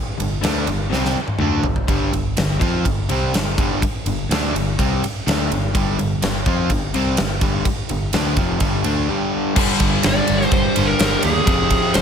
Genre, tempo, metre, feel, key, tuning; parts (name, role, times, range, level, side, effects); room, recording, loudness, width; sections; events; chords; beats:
hard rock; 125 BPM; 4/4; straight; A4 = 441 Hz
overdriven semi-hollow guitar; riff; 0.2-12.0 s; F2 to F4; -24 LUFS; left 12 dB
overdriven semi-hollow guitar; riff; 0.2-12.0 s; F2 to F4; -24 LUFS; right 12 dB
modern bright picked electric bass; bass; 0.2-12.0 s; F1 to F2; -23 LUFS; equal
huge arena drum kit; drums; 0.2-12.0 s; crash cymbal, kick drum, ride cymbal, snare drum, toms; -21 LUFS; equal
scooped high-gain guitar; riff; 9.6-12.0 s; F2 to G3; -24 LUFS; left 1 dB; distortion
smooth overdriven lead guitar; melody; 10.1-12.0 s; Ab4 to D5; -20 LUFS; right 1 dB
light reverb, small room ambience; -16 LUFS; side -7 dB against mid
0.0-9.6 A section; 9.6-12.0 B section
drum fill 0.9-1.9
0.0 G5; 11.5 Fm
0.44 0.92 1.40 | 1.89 2.37 2.85 3.34 | 3.82 4.30 4.78 5.26 | 5.74 6.22 6.70 7.18 | 7.66 8.14 8.61 9.09 | 9.57 10.04 10.52 11.00 | 11.47 11.95